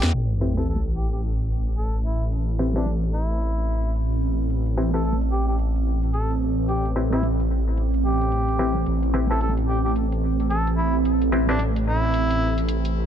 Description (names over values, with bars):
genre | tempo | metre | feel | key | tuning
glitch hop | 110 BPM | 4/4 | swing 61% on 16ths | A minor | A4 = 440 Hz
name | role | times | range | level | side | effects
bright harmonica | melody | 0.0-12.6 s | D4 to A4 | -30 LUFS | equal | ping-pong delay
phased detuned saw bass | bass | 0.0-13.1 s | A1 to E2 | -23 LUFS | equal | phaser, overdrive
drum and bass drum kit | drums | 0.0-12.9 s | hi-hat, snare drum | -29 LUFS | equal | low-pass filter on hats, low-pass filter on snare, low-pass filter on toms
sub drop | sound effects | 0.1-2.3 s | none | -28 LUFS | equal | none
deep dark ambient pad | texture | 1.7-13.1 s | C4 to G5 | -27 LUFS | right 4 dB | chorus, built-in reverb
muted clav | stabs | 0.4-11.6 s | C4 to B4 | -28 LUFS | left 2 dB | overdrive, vintage 12-bit sampler grit, ping-pong delay
room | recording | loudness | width
light reverb | low-pass filter | -20 LUFS | side -9 dB against mid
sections
0.1-13.1 A section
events
impact 0.1-2.3; filter sweep on drum 0.1-13.1; filter sweep 0.1-13.1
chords
0.1 Am7